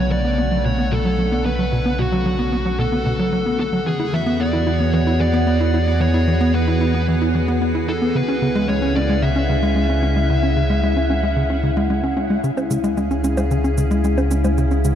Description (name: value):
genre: ambient, sequencer-driven space music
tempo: 112 BPM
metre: 4/4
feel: straight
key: unclear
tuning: A4 = 440 Hz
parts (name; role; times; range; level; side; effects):
- fuzz lead guitar; melody; 0.0-11.9 s; F#4 to E5; -25 LUFS; equal; distortion, tape echo
- evolving wavetable pad; sustained chords; 0.0-14.9 s; C#3 to G#4; -23 LUFS; equal; chorus, built-in reverb
- tight sequencer bass; riff; 0.0-14.9 s; B2 to E4; -21 LUFS; equal; tape echo
- warm sub bass; bass; 0.0-14.9 s; B1 to E2; -21 LUFS; equal; none
- bubbling stepped-filter texture; texture; 0.0-14.9 s; F#5; -33 LUFS; equal; chorus, built-in reverb
- cabasa and bongos; percussion; 12.4-14.9 s; none; -30 LUFS; right 2 dB; tape echo
room: moderate huge ambient reverb, RT60 8.3 s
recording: none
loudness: -16 LUFS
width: side -9 dB against mid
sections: 0.0-12.4 A section; 12.4-14.9 B section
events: none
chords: 0.0 Bmadd9; 3.9 Eadd9; 8.2 C#m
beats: 0.12 0.65 1.19 | 1.72 2.26 2.79 3.33 | 3.87 4.40 4.94 5.47 | 6.01 6.54 7.08 7.62 | 8.15 8.69 9.22 9.76 | 10.29 10.83 11.37 11.90 | 12.44 12.97 13.51 14.04 | 14.58